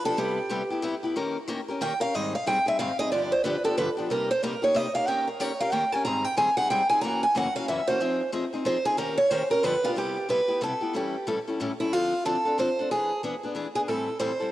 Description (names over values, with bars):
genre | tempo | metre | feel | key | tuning
jazz | 184 BPM | 3/4 | swing 61% on 8ths | Ab major, C major from 10.0 s | A4 = 440 Hz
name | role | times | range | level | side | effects
picked steel-string acoustic guitar | melody | 0.0-14.5 s | E4 to Bb5 | -25 LUFS | right 1 dB | cassette tape, analog delay
picked steel-string acoustic guitar | accompaniment | 0.0-14.5 s | Gb2 to Bb4 | -30 LUFS | left 2 dB | cassette tape
room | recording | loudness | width
moderate lush hall reverb, RT60 3.0 s | home recording on cassette | -24 LUFS | side -14 dB against mid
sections
0.0-2.1 A section; 2.1-10.0 A section; 10.0-14.5 B section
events
steel-string acoustic guitar solo 0.0-10.0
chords
0.2 Cmaj7; 1.2 Eb7; 2.1 Abmaj7; 3.1 G7; 4.1 Cm7; 5.1 Eb7; 6.0 Abmaj7; 7.0 Gb7; 8.0 Fm7; 9.0 Eb7; 9.6 G7; 10.0 Cmaj7; 10.9 A7; 11.9 Dm7; 12.9 E7; 13.9 Am7